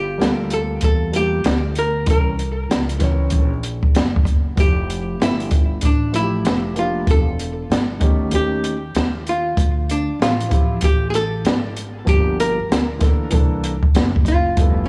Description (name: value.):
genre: hip hop, jazz-hop.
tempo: 96 BPM.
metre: 4/4.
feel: swing 64% on 16ths.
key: D minor.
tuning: A4 = 441 Hz.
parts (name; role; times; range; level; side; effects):
archtop guitar, miked and amplified; melody; 0.0-14.9 s; C#4 to Bb4; -25 LUFS; equal; tape echo.
upright bass; bass; 0.0-14.9 s; E1 to E2; -26 LUFS; equal; none.
dark grand piano; accompaniment; 0.2-14.8 s; Eb3 to Db5; -27 LUFS; equal; none.
open jazz drum kit; drums; 0.2-14.8 s; hi-hat, kick drum, snare drum; -20 LUFS; equal; none.
room: light reverb, studio ambience.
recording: dry, gritty hardware recording, small room ambience.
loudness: -19 LUFS.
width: mono.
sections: 0.0-9.6 A section; 9.6-14.9 B section.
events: break 0.0-0.8, 8.3-9.6.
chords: 0.0 Gm9; 2.1 C7b9; 4.6 Fmaj9; 7.1 Em7b5; 8.3 Eb7#11; 9.6 Dm; 12.1 Gm7; 13.3 C13.